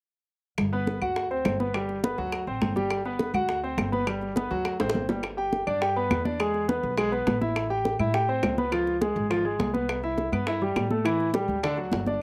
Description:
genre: latin, salsa.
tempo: 206 BPM.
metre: 4/4.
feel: straight.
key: G major.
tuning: A4 = 440 Hz.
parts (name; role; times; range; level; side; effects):
upright bass; bass; 0.6-12.2 s; G1 to A2; -34 LUFS; equal; none.
bongos; percussion; 0.6-12.2 s; none; -36 LUFS; equal; slapback echo.
claves; percussion; 0.6-11.8 s; none; -37 LUFS; equal; none.
congas; percussion; 0.6-12.2 s; none; -33 LUFS; equal; none.
clear concert grand piano; accompaniment; 0.7-12.2 s; D3 to G5; -29 LUFS; equal; slapback echo.
room: little or no reverb.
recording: recorded outdoors, with no room sound.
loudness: -27 LUFS.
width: mono.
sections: 0.6-5.2 A section; 5.2-12.2 B section.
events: drum fill 4.8-5.2.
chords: 0.6 G; 1.2 D7; 1.7 G; 2.3 D7; 2.9 G; 3.5 D7; 4.1 G; 4.7 D7; 5.2 G; 6.4 E; 7.6 Am7; 8.7 C#7; 9.9 Cmaj7; 11.0 A5; 11.6 D.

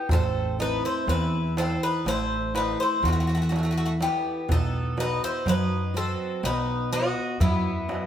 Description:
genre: greek folk, Greek bouzouki band.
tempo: 123 BPM (eighths).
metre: 9/8.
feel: straight.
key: unclear.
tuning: A4 = 438 Hz.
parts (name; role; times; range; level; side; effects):
Greek bouzouki; melody; 0.0-8.1 s; E4 to D#5; -28 LUFS; left 3 dB; none.
Greek bouzouki; second line; 0.0-8.1 s; A3 to F#4; -33 LUFS; right 3 dB; none.
fingerpicked steel-string acoustic guitar; accompaniment; 0.1-8.1 s; E3 to E5; -29 LUFS; right 2 dB; none.
upright bass; bass; 0.1-8.1 s; A1 to F#2; -29 LUFS; equal; none.
darbuka; percussion; 0.1-8.1 s; none; -29 LUFS; right 1 dB; none.
room: wet stone room reverb, RT60 1.1 s.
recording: band playing live in one room.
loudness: -23 LUFS.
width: side -10 dB against mid.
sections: 0.0-8.1 A section.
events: none.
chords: 0.1 Am; 4.5 B.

